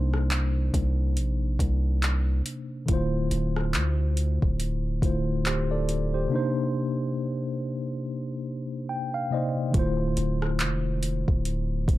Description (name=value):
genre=contemporary R&B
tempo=70 BPM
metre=4/4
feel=swing 58% on 16ths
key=D phrygian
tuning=A4 = 441 Hz
part: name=mellow tine electric piano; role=accompaniment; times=0.0-12.0 s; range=C3 to G5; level=-28 LUFS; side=left 1 dB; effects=medium stereo tremolo
part: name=long sustained 808-style bass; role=bass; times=0.0-12.0 s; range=D1 to D2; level=-26 LUFS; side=equal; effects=none
part: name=smooth R&B drum kit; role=drums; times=0.1-12.0 s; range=handclaps, hi-hat, kick drum, rim click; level=-27 LUFS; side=equal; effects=none
room=little or no reverb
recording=dark, warm production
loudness=-24 LUFS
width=side -16 dB against mid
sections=0.0-9.7 A section; 9.7-12.0 B section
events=break 6.3-9.7; tine electric piano fill 8.5-9.7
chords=0.0 Cm9; 2.9 Dm9; 6.3 Cm9; 9.7 Dm9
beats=0.31 1.17 2.03 | 2.89 3.74 4.60 5.46 | 6.31 7.17 8.03 8.89 | 9.74 10.60 11.46